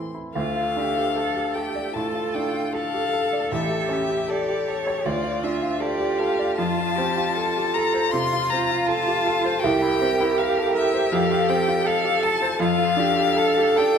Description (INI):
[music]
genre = classical, slow romantic movement for piano quartet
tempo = 66-83 BPM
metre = 4/4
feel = rubato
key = D minor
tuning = A4 = 440 Hz
[part]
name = rich violin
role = melody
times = 0.0-14.0 s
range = C#5 to C6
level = -25 LUFS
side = left 8 dB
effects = none
[part]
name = clear baby grand piano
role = accompaniment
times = 0.0-14.0 s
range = A1 to D5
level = -25 LUFS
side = equal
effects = none
[part]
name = rich cello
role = second line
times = 0.4-14.0 s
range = D4 to A4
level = -26 LUFS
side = right 4 dB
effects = none
[part]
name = rich viola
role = accompaniment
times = 0.4-14.0 s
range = F4 to Bb4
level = -28 LUFS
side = right 3 dB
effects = none
[sound]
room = wet recital hall reverb, RT60 1.4 s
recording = none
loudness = -20 LUFS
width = side -7 dB against mid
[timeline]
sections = 0.4-14.0 A section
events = none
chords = 0.4 Dm; 3.5 A7; 5.1 Dm; 6.6 F; 9.6 C7; 11.1 F; 12.6 Dm/F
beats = | 0.35 1.16 1.94 2.73 | 3.52 4.30 5.06 5.80 | 6.57 7.35 8.13 8.88 | 9.62 10.38 11.13 11.87 | 12.60 13.38